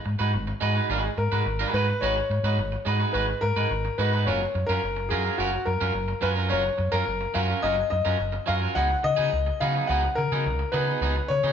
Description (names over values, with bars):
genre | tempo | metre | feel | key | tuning
disco | 107 BPM | 4/4 | straight | F# major | A4 = 440 Hz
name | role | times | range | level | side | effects
electric guitar at the edge of break-up | accompaniment | 0.1-11.5 s | F#3 to B4 | -28 LUFS | right 3 dB | none
fingered electric bass | bass | 0.1-11.5 s | F#1 to C#3 | -27 LUFS | equal | none
warm grand piano | melody | 1.2-11.5 s | F#4 to F#5 | -26 LUFS | left 3 dB | none
room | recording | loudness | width
moderate large studio reverb, RT60 0.9 s | band playing live in one room, nothing above 7.4 kHz | -23 LUFS | side -8 dB against mid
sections
0.0-11.5 A section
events
none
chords
0.0 G#m7; 4.3 F#maj7; 8.8 C#9sus4